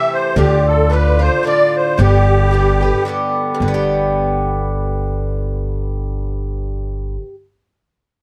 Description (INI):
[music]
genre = celtic folk, Celtic waltz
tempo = 111 BPM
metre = 3/4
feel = swing 54% on 8ths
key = G mixolydian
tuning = A4 = 440 Hz
[part]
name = musette accordion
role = melody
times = 0.0-3.0 s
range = G4 to E5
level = -19 LUFS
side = equal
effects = none
[part]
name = Irish bouzouki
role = accompaniment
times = 0.0-7.3 s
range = G2 to G4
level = -21 LUFS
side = equal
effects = none
[part]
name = upright bass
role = bass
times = 0.4-7.2 s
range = G1 to D2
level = -19 LUFS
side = equal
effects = none
[sound]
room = light reverb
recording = none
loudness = -16 LUFS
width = mono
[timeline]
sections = 0.0-3.6 A section; 3.6-6.8 B section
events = none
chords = 0.4 Dm; 2.0 G